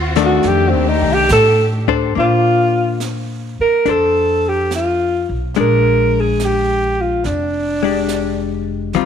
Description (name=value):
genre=jazz ballad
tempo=70 BPM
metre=4/4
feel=swing 68% on 8ths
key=Bb major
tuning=A4 = 439 Hz
part: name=warm symphonic string section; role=sustained chords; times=0.0-2.1 s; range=Eb3 to G4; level=-24 LUFS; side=equal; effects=none
part: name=upright bass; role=bass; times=0.0-9.1 s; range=F1 to Bb2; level=-20 LUFS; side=right 1 dB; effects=tube saturation
part: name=hollow-body jazz guitar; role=accompaniment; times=0.2-9.1 s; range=Eb3 to C5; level=-19 LUFS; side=left 13 dB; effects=none
part: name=jazz brush drum kit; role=drums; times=0.2-9.1 s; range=brushed snare drum, hi-hat, kick drum, snare drum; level=-31 LUFS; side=right 6 dB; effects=none
part: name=breathy alto saxophone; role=melody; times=0.3-8.6 s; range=C4 to Bb4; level=-15 LUFS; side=right 1 dB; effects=none
room=light reverb, small room ambience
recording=1960s-style stereo with parts hard left and right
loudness=-13 LUFS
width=side -8 dB against mid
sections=0.0-2.1 A section; 2.1-9.1 B section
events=alto saxophone solo 0.0-2.1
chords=0.4 F13; 2.1 Bbmaj9; 5.6 Bb6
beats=0.43 1.29 | 2.15 3.00 3.85 4.71 | 5.56 6.40 7.25 8.10 | 8.94